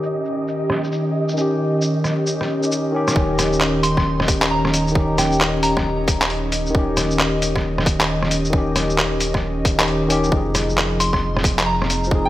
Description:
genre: future garage.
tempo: 134 BPM.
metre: 4/4.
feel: swing 62% on 16ths.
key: unclear.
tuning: A4 = 440 Hz.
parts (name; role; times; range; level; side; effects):
tine electric piano; accompaniment; 0.0-12.3 s; Eb3 to Ab4; -22 LUFS; left 1 dB; vintage 12-bit sampler grit, sidechain pumping, low-pass filter, dub echo.
airy breathy pad; sustained chords; 0.0-12.3 s; Eb3 to Eb5; -24 LUFS; equal; chorus, vintage 12-bit sampler grit, sidechain pumping.
lo-fi sampler-style drum kit; drums; 0.0-12.1 s; handclaps, hi-hat, rim click, shaker; -21 LUFS; equal; small room reverb.
flickering grainy texture; texture; 0.0-3.2 s; Eb5; -32 LUFS; right 1 dB; built-in reverb.
warm sub bass; bass; 3.2-12.3 s; Eb1 to F1; -26 LUFS; equal; sidechain pumping.
electronic kick drum; drums; 3.2-12.2 s; none; -20 LUFS; equal; overdrive, small room reverb.
soft synth bell; melody; 3.8-6.1, 11.0-12.3 s; G5 to C6; -24 LUFS; right 1 dB; chorus, digital delay.
room: wet recital hall reverb, RT60 1.4 s, digital ambience.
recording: vinyl crackle, low-pass filter.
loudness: -17 LUFS.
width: side -14 dB against mid.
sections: 0.0-3.2 A section; 3.2-12.3 B section.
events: filter sweep on tine electric piano 0.0-3.2; filter sweep 0.0-3.2.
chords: 0.0 Eb7; 10.3 Fm7.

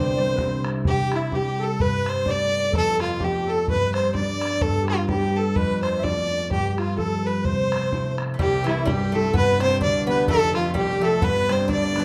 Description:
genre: celtic folk, Celtic polka.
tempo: 127 BPM.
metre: 2/4.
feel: swing 56% on 8ths.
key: C major.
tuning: A4 = 439 Hz.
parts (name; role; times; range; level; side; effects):
clear fiddle; melody; 0.0-12.0 s; E4 to D5; -26 LUFS; equal; none.
Irish bouzouki; second line; 0.0-0.6, 8.3-12.0 s; E3 to D4; -32 LUFS; equal; none.
musette accordion; second line; 0.0-12.0 s; E4 to E5; -32 LUFS; equal; none.
concert harp; accompaniment; 0.0-12.0 s; F1 to A4; -27 LUFS; equal; none.
bodhran; percussion; 0.4-12.0 s; none; -31 LUFS; equal; none.
room: moderate studio ambience, RT60 0.5 s.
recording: dark, warm production.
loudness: -22 LUFS.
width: mono.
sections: 0.9-8.4 A section; 8.4-12.0 A section.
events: none.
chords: 0.0 C; 1.8 Gadd9; 2.7 F; 3.7 G; 4.6 Gadd9; 5.6 F; 6.5 G7; 7.5 C6; 8.4 C; 9.3 Gadd9; 10.3 F; 11.2 G.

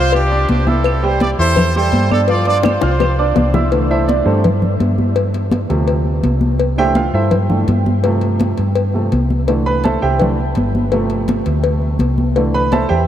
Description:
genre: latin, salsa.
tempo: 167 BPM.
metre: 4/4.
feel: straight.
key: C major.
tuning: A4 = 443 Hz.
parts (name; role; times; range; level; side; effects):
bright trumpet section; melody; 0.0-3.5 s; C4 to D5; -20 LUFS; equal; tape echo.
clear grand piano; accompaniment; 0.0-13.0 s; C3 to F6; -18 LUFS; right 3 dB; none.
hollow-body short-scale fingered electric bass; bass; 0.0-13.1 s; G1 to G2; -17 LUFS; equal; none.
claves; percussion; 0.1-3.2 s; none; -36 LUFS; right 7 dB; none.
congas; percussion; 0.1-12.9 s; none; -20 LUFS; left 1 dB; none.
cowbell and bongos; percussion; 0.1-12.9 s; none; -22 LUFS; left 6 dB; none.
room: moderate huge ambient reverb, RT60 7.6 s.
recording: dreamy mix soaked in reverb.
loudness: -13 LUFS.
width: side -10 dB against mid.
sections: 0.0-3.7 A section; 3.7-13.1 B section.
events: drum fill 2.7-3.7; grand piano solo 3.7-13.1.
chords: 0.0 G7sus4; 0.9 C6; 2.3 G7sus4; 3.7 C6; 5.2 G7sus4; 6.6 C6; 8.0 G7sus4; 9.5 C6; 10.9 G7sus4; 12.4 C6.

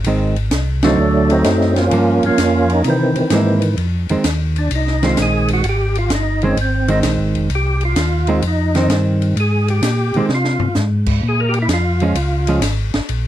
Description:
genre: soul jazz organ trio.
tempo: 129 BPM.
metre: 4/4.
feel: swing 68% on 8ths.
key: F minor.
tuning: A4 = 441 Hz.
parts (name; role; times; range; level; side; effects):
mellow tonewheel organ; bass; 0.0-13.3 s; F1 to C3; -18 LUFS; equal; slow rotary speaker.
open jazz drum kit; drums; 0.0-13.2 s; crash cymbal, hi-hat, kick drum, ride cymbal, snare drum, toms; -23 LUFS; left 1 dB; none.
hollow-body jazz guitar; accompaniment; 0.1-12.6 s; D3 to E4; -17 LUFS; right 2 dB; none.
percussive tonewheel organ; melody; 0.8-12.6 s; D#3 to Bb4; -18 LUFS; right 1 dB; slow rotary speaker, overdrive, chorus vibrato, slapback echo.
room: light reverb.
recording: dry, close 1970s-style studio recording.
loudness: -14 LUFS.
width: side -12 dB against mid.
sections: 0.0-3.8 A section; 3.8-13.3 B section.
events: band accent 0.8; tonewheel organ solo 3.8-13.3; drum fill 10.3-10.8.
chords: 0.1 Ab7#11; 1.0 D7b9; 1.9 Gm7b5; 2.8 C7alt; 3.8 Fm7; 11.2 Bbm7.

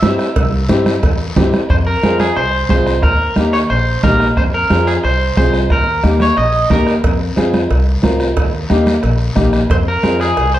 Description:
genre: latin, cumbia.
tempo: 180 BPM.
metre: 4/4.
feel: straight.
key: F minor.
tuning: A4 = 439 Hz.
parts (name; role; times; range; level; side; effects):
electric guitar at the edge of break-up; melody; 0.0-6.9, 9.7-10.6 s; Ab4 to E5; -17 LUFS; right 1 dB; spring reverb, slapback echo.
clear upright piano; accompaniment; 0.0-10.3 s; Bb3 to Bb4; -18 LUFS; left 1 dB; none.
upright bass; bass; 0.0-10.6 s; Bb1 to G2; -17 LUFS; left 1 dB; none.
bombo; percussion; 0.0-10.5 s; none; -19 LUFS; right 1 dB; none.
congas; percussion; 0.0-10.2 s; none; -19 LUFS; right 2 dB; none.
guiro; percussion; 0.0-10.6 s; none; -32 LUFS; left 3 dB; none.
timbales and cowbell; percussion; 0.0-1.5, 7.0-10.5 s; none; -24 LUFS; right 5 dB; none.
room: moderate large studio reverb, RT60 0.9 s.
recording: dark, warm production.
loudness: -12 LUFS.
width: side -13 dB against mid.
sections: 0.0-1.7 A section; 1.7-10.6 B section.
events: none.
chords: 0.0 C; 1.7 Fm; 3.0 Eb; 4.4 Fm; 5.7 Eb; 7.0 Fm; 8.4 Eb; 9.7 Fm.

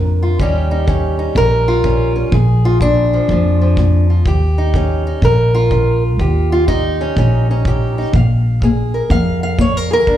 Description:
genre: acoustic country blues, solo or duo.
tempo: 124 BPM.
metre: 4/4.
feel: swing 63% on 8ths.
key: unclear.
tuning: A4 = 440 Hz.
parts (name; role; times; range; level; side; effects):
fingerpicked acoustic archtop guitar; melody; 0.0-10.2 s; Bb2 to F5; -16 LUFS; equal; slapback echo.
upright bass; bass; 0.0-10.2 s; Bb1 to F2; -14 LUFS; equal; none.
kick drum; drums; 0.4-10.2 s; none; -21 LUFS; equal; none.
room: studio ambience.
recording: live gig heard through the venue's PA, club reverb.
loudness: -12 LUFS.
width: side -11 dB against mid.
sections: 0.0-10.2 A section.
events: none.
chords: 0.4 Eb7; 2.3 Bb7; 4.3 Eb7; 8.1 Bb7(no3).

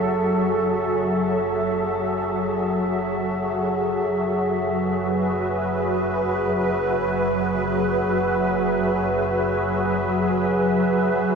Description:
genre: ambient.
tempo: free time.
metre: none.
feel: none.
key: unclear.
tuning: A4 = 440 Hz.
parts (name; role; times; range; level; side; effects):
evolving wavetable pad; sustained chords; 0.0-11.4 s; F#3 to E5; -20 LUFS; equal; ensemble chorus, built-in reverb, tremolo, shimmer reverb.
muted studio double bass section; bass; 0.0-11.4 s; F#1; -34 LUFS; equal; none.
room: wet cathedral reverb, RT60 5.5 s.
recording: worn, warbling old tape, cassette tape, warbly pitch drift.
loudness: -20 LUFS.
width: side -6 dB against mid.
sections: 0.0-11.4 A section.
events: fade-in on double bass section 0.0-11.4.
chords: 0.0 F#m9; 4.1 E/F#.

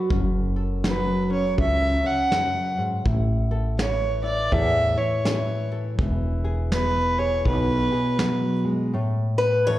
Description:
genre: acoustic folk duo or small band.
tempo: 82 BPM.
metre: 4/4.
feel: swing 61% on 8ths.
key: A major.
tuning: A4 = 440 Hz.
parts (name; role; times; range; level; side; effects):
nylon-string guitar; accompaniment; 0.0-9.8 s; F#2 to A4; -26 LUFS; left 1 dB; none.
woody fretless electric bass; bass; 0.1-7.9 s; E1 to E2; -24 LUFS; equal; none.
soft brush drum kit; drums; 0.1-8.4 s; kick drum, snare drum; -27 LUFS; equal; none.
warm fiddle; second line; 0.9-8.6 s; B4 to F#5; -25 LUFS; right 1 dB; slapback echo.
picked swing-style acoustic guitar; melody; 9.4-9.8 s; B4 to C#5; -19 LUFS; left 2 dB; slapback echo.
room: light reverb, small room reverb.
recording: live gig heard through the venue's PA, club reverb.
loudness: -21 LUFS.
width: side -14 dB against mid.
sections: 0.0-8.9 A section.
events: fiddle solo 0.0-8.9.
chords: 0.1 F#m; 3.1 A; 6.0 E; 8.9 A5.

